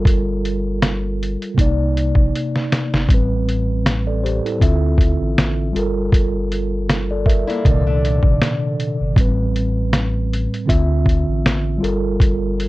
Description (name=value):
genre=lo-fi hip hop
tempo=79 BPM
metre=4/4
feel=swing 56% on 16ths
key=unclear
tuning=A4 = 440 Hz
part: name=mellow tine electric piano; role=accompaniment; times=0.0-12.7 s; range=A2 to E5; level=-20 LUFS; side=right 1 dB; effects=medium stereo tremolo, cassette tape
part: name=soft dub sub bass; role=bass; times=0.0-12.7 s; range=G1 to D2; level=-22 LUFS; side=equal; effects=none
part: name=lo-fi sampler-style drum kit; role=drums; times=0.1-12.7 s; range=hi-hat, kick drum, snare drum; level=-16 LUFS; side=equal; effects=none
part: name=nylon-string guitar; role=second line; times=7.5-9.0 s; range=A3 to E4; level=-28 LUFS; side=left 3 dB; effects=tape echo
room=light reverb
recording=cassette tape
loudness=-16 LUFS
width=side -19 dB against mid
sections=0.0-12.7 A section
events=drum fill 2.3-3.1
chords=0.0 Gm9; 1.6 Cm9; 3.1 Am9; 4.6 Dm9; 5.7 Gm9; 7.6 Cm9; 9.2 Am9; 10.7 Dm9; 11.8 Gm9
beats=| 0.05 0.81 1.57 2.33 | 3.09 3.85 4.61 5.37 | 6.13 6.89 7.65 8.41 | 9.17 9.93 10.69 11.45 | 12.21